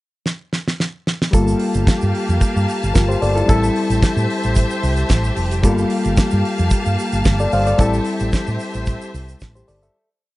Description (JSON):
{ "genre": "disco", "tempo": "111 BPM", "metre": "4/4", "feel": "straight", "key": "G dorian", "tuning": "A4 = 440 Hz", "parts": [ { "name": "damped 70s drum kit", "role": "drums", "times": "0.3-9.9 s", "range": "hi-hat, kick drum, snare drum", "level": "-18 LUFS", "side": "right 1 dB", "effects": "none" }, { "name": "reed electric piano", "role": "accompaniment", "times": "1.3-10.1 s", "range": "G3 to F5", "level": "-20 LUFS", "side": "left 2 dB", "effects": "overdrive, spring reverb" }, { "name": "clear symphonic string section", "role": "sustained chords", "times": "1.3-9.9 s", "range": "Bb3 to A5", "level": "-25 LUFS", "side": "left 1 dB", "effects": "none" }, { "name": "fingered electric bass", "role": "bass", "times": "1.3-9.9 s", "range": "F1 to A2", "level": "-19 LUFS", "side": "equal", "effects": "none" }, { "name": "tube shaker", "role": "percussion", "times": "1.3-9.9 s", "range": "none", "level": "-37 LUFS", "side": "right 6 dB", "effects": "none" } ], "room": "light reverb", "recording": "nothing above 10.9 kHz", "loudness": "-15 LUFS", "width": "side -18 dB against mid", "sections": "0.0-1.3 pickup bar; 1.3-10.0 groove", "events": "drum fill 0.3-1.3; fade-out 7.8-10.0", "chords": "0.0 N.C.; 1.3 Gm9; 3.5 Am7; 5.6 Gm9; 7.8 Am7" }